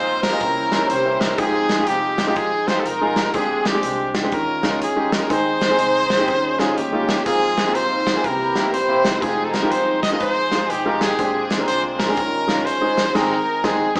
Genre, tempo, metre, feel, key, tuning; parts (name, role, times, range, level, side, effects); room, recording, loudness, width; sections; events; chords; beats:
uptempo gospel; 122 BPM; 4/4; swing 64% on 8ths; Ab major; A4 = 441 Hz
brilliant trumpet; melody; 0.0-14.0 s; G4 to Eb5; -24 LUFS; equal
warm studio string section; melody; 0.0-14.0 s; Bb3 to Eb5; -27 LUFS; equal
bright baby grand piano; accompaniment; 0.0-14.0 s; Ab2 to Eb5; -26 LUFS; equal
tonewheel organ; sustained chords; 0.0-14.0 s; Db3 to G5; -33 LUFS; equal
upright bass; bass; 0.0-14.0 s; F1 to E2; -42 LUFS; equal
natural country drum kit; drums; 0.2-14.0 s; crash cymbal, hi-hat, kick drum, snare drum; -27 LUFS; equal
wet studio reverb, RT60 0.8 s; band playing live in one room, small speaker sound; -20 LUFS; mono
0.0-14.0 A section
band accent 13.2-14.0
0.4 C7b9; 1.4 Fm9/Ab; 3.3 Bb13; 4.3 Eb9sus4; 5.3 Ab/Eb; 6.3 Eb9sus4; 7.3 Ab69; 8.2 C7; 9.2 Fm9; 11.2 Bb13; 12.2 Eb9sus4; 13.2 Ab/Eb
0.41 0.89 | 1.38 1.87 2.36 2.85 | 3.34 3.83 4.32 4.81 | 5.30 5.79 6.28 6.77 | 7.26 7.75 8.24 8.73 | 9.22 9.71 10.21 10.70 | 11.19 11.68 12.17 12.66 | 13.15 13.64